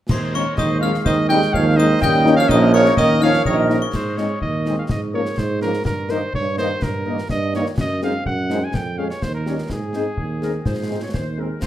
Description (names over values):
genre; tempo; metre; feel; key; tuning
military-style march for wind band; 125 BPM; 2/4; straight; Ab major; A4 = 441 Hz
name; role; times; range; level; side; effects
warm cornet; melody; 0.1-11.7 s; Ab4 to Ab5; -24 LUFS; right 1 dB; none
glockenspiel with brass mallets; second line; 0.1-3.9 s; C6 to G6; -28 LUFS; left 6 dB; none
mellow flute section; second line; 0.1-3.9, 11.6-11.7 s; Eb4 to G5; -26 LUFS; equal; none
warm euphonium; second line; 0.1-3.9 s; C3 to G3; -25 LUFS; right 3 dB; none
warm woodwind section; second line; 0.1-11.7 s; G4 to F5; -29 LUFS; left 1 dB; none
mellow trombone section; sustained chords; 0.1-11.7 s; Eb3 to Eb4; -25 LUFS; right 1 dB; none
warm tuba; bass; 0.1-11.7 s; Bb1 to Ab2; -22 LUFS; right 2 dB; none
concert snare drum, clash cymbals and concert bass drum; drums; 0.1-11.7 s; none; -26 LUFS; left 1 dB; none
mellow French horn section; accompaniment; 0.3-11.5 s; Ab3 to Bb4; -24 LUFS; left 4 dB; none
room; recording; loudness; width
wet large studio reverb, RT60 0.8 s; none; -17 LUFS; side -12 dB against mid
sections
0.1-3.9 A section; 3.9-11.6 B section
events
none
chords
0.1 Ab/Eb; 2.0 Eb5; 3.9 Ab; 4.9 Bbm7/Ab; 5.9 Eb/G; 7.8 Ab7/Gb; 8.7 Db/F; 9.2 Eb7; 9.7 Ab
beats
| 0.10 0.58 | 1.06 1.54 | 2.02 2.50 | 2.98 3.46 | 3.94 4.42 | 4.90 5.38 | 5.86 6.34 | 6.82 7.30 | 7.78 8.26 | 8.74 9.22 | 9.70 10.18 | 10.66 11.14 | 11.62